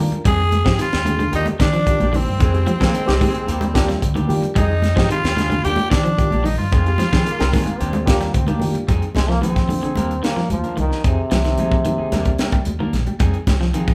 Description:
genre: afrobeat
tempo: 111 BPM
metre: 4/4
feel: straight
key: F dorian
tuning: A4 = 439 Hz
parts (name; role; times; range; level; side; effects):
- barky reed electric piano; accompaniment; 0.0-8.8 s; Ab3 to Bb4; -28 LUFS; equal; fast tremolo
- electric guitar at the edge of break-up; arpeggios; 0.0-13.9 s; D3 to G3; -28 LUFS; equal; analog delay
- deep dub fingered electric bass; bass; 0.0-13.9 s; Bb1 to F3; -24 LUFS; equal; none
- tight funk drum kit; drums; 0.1-13.9 s; hi-hat, kick drum, snare drum; -22 LUFS; equal; none
- congas; percussion; 0.1-13.6 s; none; -28 LUFS; equal; none
- electric guitar at the edge of break-up; stabs; 0.2-13.9 s; Eb3 to Bb4; -32 LUFS; equal; none
- growling tenor saxophone; melody; 0.3-8.2 s; C4 to Ab4; -26 LUFS; equal; none
- bright trumpet; second line; 0.3-8.2 s; C4 to Ab4; -34 LUFS; equal; none
- bright trombone section; second line; 2.7-8.9 s; G3 to C4; -32 LUFS; equal; none
- brilliant trombone; melody; 9.2-12.6 s; C3 to C4; -26 LUFS; equal; none
room: moderate large studio reverb, RT60 1.0 s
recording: band playing live in one room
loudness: -18 LUFS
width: mono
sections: 0.0-8.9 A section; 8.9-13.9 B section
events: trombone solo 8.9-13.9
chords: 0.3 Fm7; 1.3 Ebmaj7; 2.4 Fm7; 3.5 Ebmaj7; 4.6 Fm7; 5.6 Ebmaj7; 6.7 Fm7; 7.8 Ebmaj7; 8.9 Fm7; 10.0 Ebmaj7; 11.0 Fm7; 12.1 Ebmaj7; 13.2 Fm7

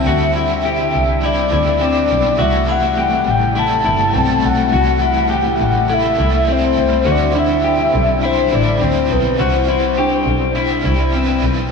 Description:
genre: dream pop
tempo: 103 BPM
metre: 4/4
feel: straight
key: C lydian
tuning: A4 = 442 Hz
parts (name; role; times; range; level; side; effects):
- soft octave-layered synth lead; melody; 0.0-11.1 s; B4 to A5; -17 LUFS; left 2 dB; chorus, tape echo
- crunchy overdriven guitar; accompaniment; 0.0-11.7 s; C3 to C5; -24 LUFS; right 4 dB; tremolo, analog chorus, tape echo
- warm analog pad; sustained chords; 0.0-11.7 s; C3 to E4; -23 LUFS; left 2 dB; chorus
- clean electric guitar; arpeggios; 0.0-11.7 s; C4 to G4; -20 LUFS; left 5 dB; lush chorus, tape echo
- rich double bass; bass; 0.0-11.7 s; G1 to D2; -20 LUFS; equal; none
- synth chime; texture; 0.0-11.7 s; D4 to A5; -27 LUFS; equal; ensemble chorus, phaser, tape echo
room: moderate plate reverb, RT60 2.7 s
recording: echo-heavy mix, studio reverb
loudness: -13 LUFS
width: side -5 dB against mid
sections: 0.0-11.7 A section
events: none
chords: 0.0 D9sus4; 2.4 C6; 7.1 D9sus4; 9.4 Cmaj7

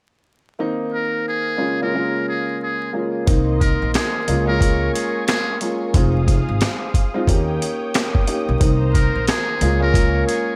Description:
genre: hip hop, boom-bap hip-hop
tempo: 90 BPM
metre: 4/4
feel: swing 62% on 16ths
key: unclear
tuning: A4 = 441 Hz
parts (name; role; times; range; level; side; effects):
- dark upright piano; accompaniment; 0.6-10.6 s; Db3 to G4; -25 LUFS; equal; high-pass filter, low-pass filter
- trumpet with metal mute; melody; 0.9-10.6 s; Ab4 to Bb4; -27 LUFS; equal; high-pass filter, low-pass filter
- warm analog pad; sustained chords; 3.3-10.6 s; Ab4 to Eb6; -34 LUFS; equal; chorus, high-pass filter, low-pass filter
- upright bass; bass; 3.3-10.2 s; F1 to Eb2; -22 LUFS; equal; none
- boom bap sampler-style drum kit; drums; 3.3-10.5 s; hi-hat, kick drum, snare drum; -21 LUFS; equal; none
room: light reverb, small room ambience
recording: vinyl crackle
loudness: -19 LUFS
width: mono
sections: 0.6-3.3 A section; 3.3-10.6 B section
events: none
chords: 0.6 Cm7; 1.6 Bbm7/Db; 3.3 Cm7; 4.3 Bbm7/Db; 5.9 Fm7; 7.3 Eb7; 8.6 Cm7; 9.6 Bbm7/Db

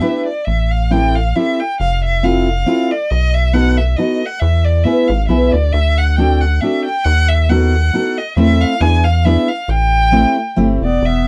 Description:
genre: musette waltz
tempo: 137 BPM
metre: 3/4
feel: swing 54% on 8ths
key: A minor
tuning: A4 = 445 Hz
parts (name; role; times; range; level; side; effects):
- rich violin; melody; 0.0-11.3 s; D5 to G#5; -21 LUFS; equal; none
- mellow clarinet; second line; 0.0-0.3, 10.8-11.3 s; B3; -22 LUFS; equal; none
- fingerpicked steel-string acoustic guitar; accompaniment; 0.0-10.8 s; A3 to B4; -18 LUFS; equal; none
- rubbery square bass; bass; 0.5-11.3 s; E1 to E2; -16 LUFS; equal; none
room: little or no reverb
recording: dry, close 1970s-style studio recording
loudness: -15 LUFS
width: mono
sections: 0.5-11.3 A section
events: none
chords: 0.5 Am7; 1.8 Fmaj7; 3.1 B7; 4.4 E; 5.7 D7; 7.1 B7/D#; 8.4 Am/E; 8.8 E7; 9.7 Am7

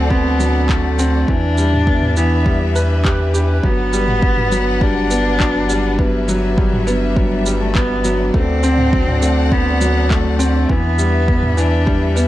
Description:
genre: piano and strings electronica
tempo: 102 BPM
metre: 4/4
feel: straight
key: G major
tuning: A4 = 440 Hz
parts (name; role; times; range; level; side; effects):
- rich cello; melody; 0.0-12.2 s; F#3 to D4; -20 LUFS; equal; none
- warm studio string section; sustained chords; 0.0-12.3 s; D4 to F#5; -25 LUFS; left 2 dB; sidechain pumping
- bright upright piano; riff; 0.0-12.3 s; E3 to B4; -20 LUFS; equal; none
- warm sub bass; bass; 0.0-12.3 s; G1 to E2; -18 LUFS; equal; sidechain pumping
- electronic kick drum; drums; 0.1-12.0 s; none; -18 LUFS; equal; overdrive
- organic electronic drum kit; drums; 0.4-12.3 s; handclaps, shaker, toms; -24 LUFS; right 1 dB; none
room: light reverb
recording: dark, warm production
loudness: -13 LUFS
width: side -14 dB against mid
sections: 0.0-12.3 A section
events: none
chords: 0.0 D7; 1.3 Em7; 3.6 Gmaj7; 8.3 D7; 10.7 Em7

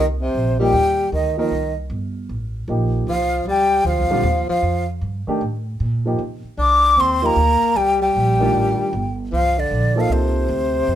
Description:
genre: modal jazz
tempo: 154 BPM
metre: 4/4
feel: swing 65% on 8ths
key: C dorian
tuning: A4 = 440 Hz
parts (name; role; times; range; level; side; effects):
- breathy concert flute; melody; 0.0-11.0 s; C5 to D6; -19 LUFS; left 1 dB; none
- breathy tenor saxophone; second line; 0.0-11.0 s; C3 to D4; -22 LUFS; left 1 dB; none
- upright bass; bass; 0.0-11.0 s; G1 to C3; -22 LUFS; right 1 dB; none
- dark baby grand piano; accompaniment; 0.6-10.5 s; D3 to Bb4; -24 LUFS; equal; none
room: moderate club reverb, RT60 0.8 s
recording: minimal, uncompressed stereo recording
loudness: -16 LUFS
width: side -11 dB against mid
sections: 0.0-11.0 A section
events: none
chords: 0.0 Cm9; 3.1 Bbadd9; 6.2 Cm9; 9.3 Bbadd9

